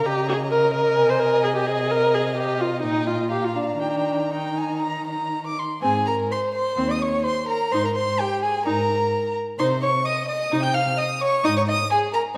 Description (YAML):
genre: quick classical-period movement for string quartet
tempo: 128 BPM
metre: 4/4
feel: rubato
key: Eb major, Ab major from 5.8 s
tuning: A4 = 440 Hz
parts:
  - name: warm violin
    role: melody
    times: 0.0-12.2 s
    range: F5 to G6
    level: -29 LUFS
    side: equal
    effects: none
  - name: rich viola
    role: accompaniment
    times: 0.0-12.4 s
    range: C4 to C5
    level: -25 LUFS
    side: equal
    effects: none
  - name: warm cello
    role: bass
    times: 0.0-11.8 s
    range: Eb2 to Eb3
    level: -31 LUFS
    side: equal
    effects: none
  - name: dark violin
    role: second line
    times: 0.1-12.2 s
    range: G4 to D6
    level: -28 LUFS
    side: equal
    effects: none
room: wet recital hall reverb, RT60 1.7 s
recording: none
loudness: -22 LUFS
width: mono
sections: 0.0-5.8 A section; 5.8-12.4 B section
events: none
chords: 0.1 Eb5/Db; 1.0 Ab/C; 1.9 F5/C; 2.8 Eb/Bb; 3.3 Bb; 3.8 Eb; 5.8 Ab; 7.7 Eb5/Ab; 9.6 Cmadd11; 11.4 Ab5